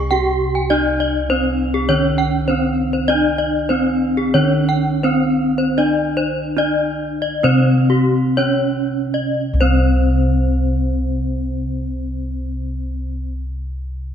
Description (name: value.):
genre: Balinese gamelan.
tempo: 56-101 BPM.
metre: 4/4.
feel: straight.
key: C pelog.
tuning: A4 = 440 Hz.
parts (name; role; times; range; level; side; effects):
gamelan-type bronze metallophone; melody; 0.0-13.3 s; C4 to Ab4-40c; -19 LUFS; right 1 dB; none.
gamelan-type bossed gongs; bass; 0.0-13.2 s; C2 to D4+50c; -20 LUFS; left 1 dB; none.
gamelan-type bronze metallophone; arpeggios; 0.1-13.3 s; G4-45c to Ab5-40c; -21 LUFS; left 2 dB; none.
room: moderate concert hall reverb, RT60 2.0 s.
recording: none.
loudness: -15 LUFS.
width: side -8 dB against mid.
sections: 0.0-9.4 A section; 9.4-13.7 B section.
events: slowing down 3.1-9.4.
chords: none.